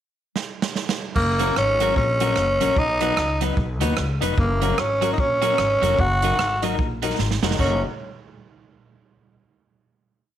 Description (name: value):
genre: ska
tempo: 149 BPM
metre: 4/4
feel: swing 60% on 8ths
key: F# major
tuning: A4 = 437 Hz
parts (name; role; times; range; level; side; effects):
- swinging big-band drum kit; drums; 0.4-7.7 s; crash cymbal, hi-hat, kick drum, rim click, snare drum, splash cymbal; -26 LUFS; right 3 dB; none
- growling tenor saxophone; melody; 1.2-7.8 s; A#3 to F#4; -21 LUFS; equal; none
- upright bass; bass; 1.2-7.8 s; E#1 to D#2; -25 LUFS; equal; none
- clean electric guitar; accompaniment; 1.4-7.7 s; D#3 to F#4; -29 LUFS; right 10 dB; wide subtle chorus, slapback echo
- warm upright piano; stabs; 1.4-7.8 s; C#4 to B4; -28 LUFS; left 9 dB; tube saturation, slapback echo
room: moderate plate reverb, RT60 1.1 s, small room ambience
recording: 1960s-style stereo with parts hard left and right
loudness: -19 LUFS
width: side -11 dB against mid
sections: 0.0-1.2 pickup bar; 1.2-7.6 A section; 7.6-9.2 final chord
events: drum fill 0.4-1.2, 7.2-7.6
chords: 0.0 N.C.; 1.2 F#; 2.8 B; 4.4 F#; 6.0 F#6